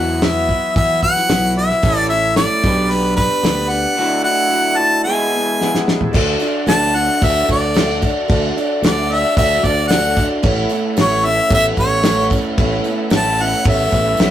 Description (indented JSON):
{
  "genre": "folk rock and heartland rock",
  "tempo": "112 BPM",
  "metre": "4/4",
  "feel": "straight",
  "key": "unclear",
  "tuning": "A4 = 440 Hz",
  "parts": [
    { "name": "clear harmonica", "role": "melody", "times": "0.0-14.3 s", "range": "B4 to A5", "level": "-16 LUFS", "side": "equal", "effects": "none" },
    { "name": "picked steel-string acoustic guitar", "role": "accompaniment", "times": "0.0-14.3 s", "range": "E2 to B4", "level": "-26 LUFS", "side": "left 4 dB", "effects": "none" },
    { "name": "bright tonewheel organ", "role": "sustained chords", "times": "0.0-14.3 s", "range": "G3 to E5", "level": "-30 LUFS", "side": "equal", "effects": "none" },
    { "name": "electric guitar through a small old amp", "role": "riff", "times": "0.0-14.3 s", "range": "E2 to B4", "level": "-22 LUFS", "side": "right 2 dB", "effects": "none" },
    { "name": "fingered electric bass", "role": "bass", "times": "0.0-14.3 s", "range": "A1 to E3", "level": "-22 LUFS", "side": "equal", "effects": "none" },
    { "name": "damped 70s drum kit", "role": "drums", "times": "0.2-14.3 s", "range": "crash cymbal, hi-hat, kick drum, snare drum, toms", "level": "-18 LUFS", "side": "equal", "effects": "none" },
    { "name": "mellow reed electric piano", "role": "accompaniment", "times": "1.8-14.3 s", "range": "E4 to E5", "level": "-27 LUFS", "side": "right 3 dB", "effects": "fast tremolo" },
    { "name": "tambourine", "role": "percussion", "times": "1.8-14.3 s", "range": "none", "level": "-37 LUFS", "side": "right 4 dB", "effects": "none" }
  ],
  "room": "wet small room ambience, RT60 0.5 s",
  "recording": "rough rehearsal-room recording, warm saturation",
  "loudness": "-13 LUFS",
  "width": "side -11 dB against mid",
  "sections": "0.0-6.1 A section; 6.1-14.3 B section",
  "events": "drum fill 5.6-6.1",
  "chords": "0.0 Esus2; 1.8 A; 2.6 G/B; 4.0 Dadd9; 5.1 E; 6.1 D; 10.4 Aadd9"
}